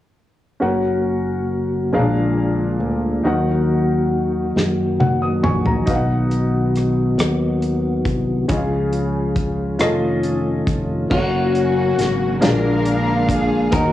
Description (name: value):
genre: slow gospel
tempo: 46 BPM (dotted quarters)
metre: 6/8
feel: straight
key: F# major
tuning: A4 = 440 Hz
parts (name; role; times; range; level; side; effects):
- clear baby grand piano; accompaniment; 0.6-13.9 s; A#2 to D#6; -23 LUFS; left 1 dB; none
- percussive tonewheel organ; sustained chords; 0.6-13.9 s; C#3 to E#5; -20 LUFS; equal; slow rotary speaker, chorus vibrato
- fingered electric bass; bass; 0.6-13.9 s; F1 to F#2; -24 LUFS; equal; none
- natural country drum kit; drums; 4.6-13.9 s; crash cymbal, hi-hat, kick drum, rim click, snare drum, toms; -22 LUFS; equal; none
- clean electric guitar; melody; 11.1-13.9 s; F#4 to A#4; -24 LUFS; left 2 dB; cassette tape, tape echo
- warm studio string section; melody; 11.1-13.9 s; A#3 to E#5; -21 LUFS; left 2 dB; cassette tape
room: light reverb, small room ambience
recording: home recording on cassette, studio reverb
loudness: -16 LUFS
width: side -13 dB against mid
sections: 0.6-11.1 A section; 11.1-13.9 B section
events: drum fill 4.6-5.9; grand piano fill 4.6-5.9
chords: 0.6 F#; 1.9 A#7; 3.2 D#m; 5.9 B; 8.5 C#; 9.8 Faug7; 11.1 F#; 12.4 A#7